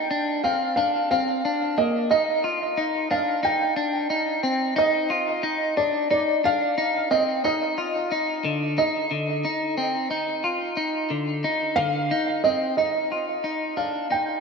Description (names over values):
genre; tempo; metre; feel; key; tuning
dream pop; 90 BPM; 4/4; straight; unclear; A4 = 441 Hz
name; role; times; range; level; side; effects
felt-muted upright piano; melody; 0.0-14.4 s; D5 to G5; -24 LUFS; right 2 dB; analog chorus, diffuse ambient delay
clean electric guitar; arpeggios; 0.0-14.4 s; D3 to F4; -24 LUFS; left 1 dB; wide subtle chorus, diffuse ambient delay
room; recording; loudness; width
wet plate reverb, RT60 3.7 s; dreamy mix soaked in reverb; -21 LUFS; side -4 dB against mid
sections
0.0-12.8 A section; 12.8-14.4 B section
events
none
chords
0.0 Bb; 2.1 Cmadd9; 7.4 Cmadd9/D (rootless)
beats
0.10 0.77 1.44 | 2.10 2.77 3.44 4.10 | 4.77 5.44 6.10 6.77 | 7.44 8.10 8.77 9.44 | 10.10 10.77 11.44 12.10 | 12.77 13.44 14.10